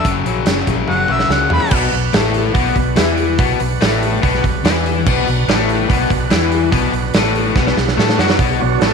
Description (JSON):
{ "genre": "blues rock power trio and southern rock", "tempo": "144 BPM", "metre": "4/4", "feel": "straight", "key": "B minor", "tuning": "A4 = 440 Hz", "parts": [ { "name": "clear harmonica", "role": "melody", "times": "0.0-1.7 s", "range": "E5 to B5", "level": "-19 LUFS", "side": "equal", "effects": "overdrive" }, { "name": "overdriven semi-hollow guitar", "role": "riff", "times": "0.0-8.9 s", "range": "F#2 to A4", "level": "-18 LUFS", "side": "left 9 dB", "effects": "none" }, { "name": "big rock drum kit", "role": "drums", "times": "0.0-8.9 s", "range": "crash cymbal, hi-hat, kick drum, snare drum, toms", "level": "-17 LUFS", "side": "right 2 dB", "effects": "none" }, { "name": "vintage muted fingered electric bass", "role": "bass", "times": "0.1-8.9 s", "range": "F#1 to A2", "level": "-20 LUFS", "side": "right 2 dB", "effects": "none" }, { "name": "overdriven tonewheel organ", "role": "sustained chords", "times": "1.7-8.9 s", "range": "F#3 to B4", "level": "-23 LUFS", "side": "right 8 dB", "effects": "slow rotary speaker" } ], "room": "moderate echo chamber reverb, RT60 1.7 s, studio ambience", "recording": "1960s-style stereo with parts hard left and right", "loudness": "-13 LUFS", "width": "side -5 dB against mid", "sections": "0.0-1.7 A section; 1.7-8.4 B section", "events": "drum fill 0.9-1.7, 7.6-8.4", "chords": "0.1 F#; 1.7 Bm", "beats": "| 0.05 0.47 0.89 1.31 | 1.73 2.15 2.56 2.98 | 3.40 3.81 4.23 4.65 | 5.06 5.48 5.89 6.31 | 6.73 7.14 7.56 7.97 | 8.39 8.81" }